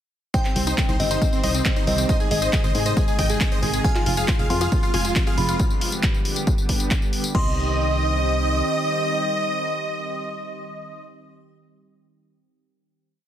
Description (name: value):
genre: uplifting trance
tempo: 137 BPM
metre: 4/4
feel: straight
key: C harmonic minor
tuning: A4 = 441 Hz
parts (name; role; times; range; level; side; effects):
- dense compressed supersaw; melody; 0.3-11.0 s; C4 to Ab5; -26 LUFS; equal; sidechain pumping, digital delay
- glassy synth bell; second line; 0.3-11.0 s; Eb5 to C6; -30 LUFS; equal; chorus, digital delay
- plucky unison lead; second line; 0.3-11.0 s; C4 to Ab5; -36 LUFS; equal; none
- lush unison pad; sustained chords; 0.3-11.0 s; C3 to G4; -29 LUFS; right 1 dB; chorus, sidechain pumping
- electronic kick drum; drums; 0.3-7.4 s; none; -22 LUFS; equal; none
- punchy analog drum machine; drums; 0.3-7.4 s; crash cymbal, handclaps, hi-hat, tambourine; -28 LUFS; left 1 dB; sidechain pumping on hats, sidechain pumping on perc, sidechain pumping on cymbals
- solid FM bass; bass; 0.6-8.6 s; F1 to Ab2; -24 LUFS; equal; sidechain pumping
- wide unison pluck; arpeggios; 3.8-7.6 s; C4 to F5; -32 LUFS; left 3 dB; sidechain pumping, digital delay
room: light reverb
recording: dense, heavily limited modern master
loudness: -19 LUFS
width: side -10 dB against mid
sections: 0.3-7.3 drop; 7.3-10.9 final chord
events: drop 0.3-7.3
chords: 0.3 Cm; 2.1 Ab; 3.8 Fm; 5.6 G; 7.3 Cm